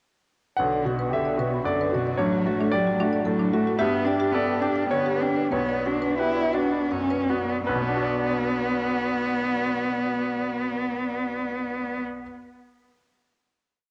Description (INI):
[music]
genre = neoclassical piano and strings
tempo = 78-114 BPM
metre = 3/4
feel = rubato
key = B minor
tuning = A4 = 440 Hz
[part]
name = rich cello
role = second line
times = 0.6-12.0 s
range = B2 to E4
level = -28 LUFS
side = equal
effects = cassette tape, analog delay
[part]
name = bright grand piano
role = accompaniment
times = 0.6-12.4 s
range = A1 to F#5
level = -29 LUFS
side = equal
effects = cassette tape
[part]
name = rich chamber string section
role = sustained chords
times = 0.6-12.0 s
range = A3 to D5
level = -36 LUFS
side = equal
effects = cassette tape
[part]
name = marimba with hard mallets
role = arpeggios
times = 0.6-7.6 s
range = D4 to B5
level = -33 LUFS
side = equal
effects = cassette tape, analog delay
[sound]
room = light reverb, small room reverb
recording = home recording on cassette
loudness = -25 LUFS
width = mono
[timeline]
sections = 0.6-7.7 theme; 7.7-12.2 final chord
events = slowing down 3.0-7.7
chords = 0.6 Bm; 2.2 D/A; 3.8 G; 5.5 Bm